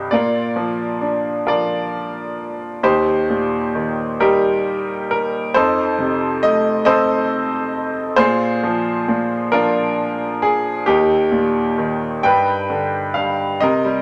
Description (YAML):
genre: classical, lyrical solo piano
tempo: 44 BPM (dotted quarters)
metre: 6/8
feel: rubato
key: Eb major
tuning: A4 = 440 Hz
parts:
  - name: bright grand piano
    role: solo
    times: 0.0-14.0 s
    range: Eb2 to G5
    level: -18 LUFS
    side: equal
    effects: none
room: wet small room reverb, RT60 0.5 s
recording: none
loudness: -18 LUFS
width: mono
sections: 0.0-13.6 A section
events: none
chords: 0.1 Bb; 2.8 Eb; 5.6 F7; 8.2 Bb7; 10.9 Eb; 12.2 G